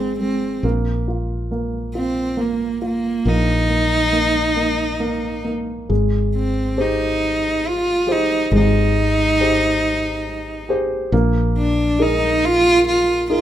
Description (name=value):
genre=acoustic folk-pop ballad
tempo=46 BPM (dotted quarters)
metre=6/8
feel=straight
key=unclear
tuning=A4 = 440 Hz
part: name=warm cello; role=melody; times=0.0-13.4 s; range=Bb3 to F4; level=-18 LUFS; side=right 1 dB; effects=none
part: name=warm upright piano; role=accompaniment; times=0.0-13.4 s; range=Ab3 to C5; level=-23 LUFS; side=equal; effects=none
part: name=woody fretless electric bass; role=bass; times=0.0-13.4 s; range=Ab1 to Bb1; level=-22 LUFS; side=equal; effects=none
room=light reverb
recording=minimal, uncompressed stereo recording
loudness=-16 LUFS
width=side -11 dB against mid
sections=0.0-5.9 A section; 5.9-13.4 B section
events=none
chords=0.0 Ab; 0.6 Bb5; 3.3 Eb5/Bb; 5.9 Abmaj7; 11.1 Bb7sus4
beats=| 0.64 1.95 | 3.26 4.58 | 5.90 7.21 | 8.52 9.82 | 11.12 12.43